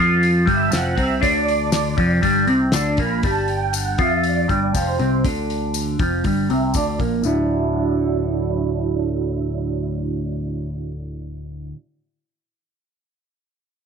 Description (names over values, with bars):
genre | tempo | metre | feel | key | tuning
psychedelic rock | 120 BPM | 4/4 | straight | unclear | A4 = 440 Hz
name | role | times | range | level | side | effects
clean electric guitar | riff | 0.0-11.8 s | D2 to F4 | -20 LUFS | equal | phaser, double-tracked left and right, low-pass filter
picked electric bass | bass | 0.0-11.7 s | D1 to F2 | -25 LUFS | left 1 dB | none
damped 70s drum kit | drums | 0.2-7.1 s | hi-hat, kick drum, snare drum | -25 LUFS | left 1 dB | none
ensemble organ-string | sustained chords | 0.5-11.7 s | F#3 to B5 | -25 LUFS | right 10 dB | ensemble chorus, low-pass filter
tambourine | percussion | 0.7-7.5 s | none | -29 LUFS | left 20 dB | none
room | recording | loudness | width
moderate spring reverb, RT60 1.1 s, small room reverb | 1960s-style stereo with parts hard left and right | -18 LUFS | side -6 dB against mid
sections
0.0-7.2 A section; 7.2-11.3 B section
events
string machine solo 0.0-7.2; filter sweep 0.0-7.2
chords
0.0 G5; 7.2 Dadd9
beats
0.22 0.72 | 1.22 1.73 2.23 2.73 | 3.23 3.73 4.24 4.74 | 5.24 5.74 6.24 6.74 | 7.25 7.75 8.25 8.75 | 9.25 9.75 10.25 10.76